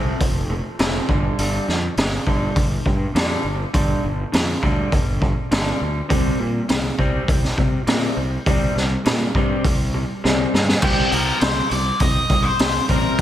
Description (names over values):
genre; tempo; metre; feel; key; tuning
quiet-loud alternative rock; 102 BPM; 4/4; straight; unclear; A4 = 440 Hz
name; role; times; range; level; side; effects
electric guitar through a small old amp; arpeggios; 0.0-13.2 s; G2 to C4; -24 LUFS; equal; digital delay
fuzz fingered electric bass; bass; 0.0-13.2 s; F1 to C3; -24 LUFS; equal; overdrive
raw garage drum kit; drums; 0.2-13.2 s; crash cymbal, hi-hat, kick drum, snare drum; -20 LUFS; equal; none
octave-fuzz lead guitar; melody; 10.8-13.2 s; G4 to Eb5; -21 LUFS; left 2 dB; distortion, slapback echo
room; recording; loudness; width
moderate lush hall reverb, RT60 1.7 s, small room ambience; big arena sound; -17 LUFS; side -12 dB against mid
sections
0.0-10.8 A section; 10.8-13.2 B section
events
drum fill 10.2-10.8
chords
0.0 F; 1.1 G5; 6.1 C5